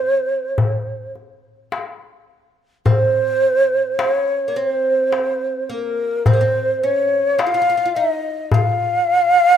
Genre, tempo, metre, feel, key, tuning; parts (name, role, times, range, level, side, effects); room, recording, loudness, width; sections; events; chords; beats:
Turkish makam ensemble; 106 BPM (eighths); 10/8; straight; A4 = 441 Hz
breathy mellow ney; melody; 0.0-9.6 s; Bb4 to F5; -16 LUFS; right 1 dB
oud; second line; 0.0-9.6 s; Bb3 to F4; -26 LUFS; right 2 dB
darbuka; percussion; 0.0-8.8 s; -19 LUFS; left 3 dB
light reverb, studio reverb; rough home demo mix; -16 LUFS; side -9 dB against mid
0.0-9.6 A section
0.03 0.59 1.16 1.73 2.29 | 2.86 3.42 3.99 4.55 5.12 5.69 6.25 6.82 7.39 7.95 | 8.52 9.08